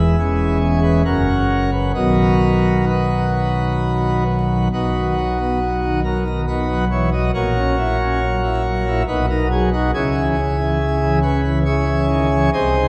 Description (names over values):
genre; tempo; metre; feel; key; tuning
classical, chorale-style piece for pipe organ; 69 BPM; 3/4; rubato; B major; A4 = 440 Hz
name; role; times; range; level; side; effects
pipe organ, plenum; solo; 0.0-12.9 s; E1 to D#5; -18 LUFS; equal; none
room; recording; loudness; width
wet church reverb, RT60 2.5 s; dark, warm production, vinyl crackle; -18 LUFS; mono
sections
0.0-4.7 A section; 4.7-12.9 B section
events
none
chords
0.2 C#m/E; 1.1 F#; 2.0 B; 7.3 F#7/A#; 9.1 B; 9.9 C#m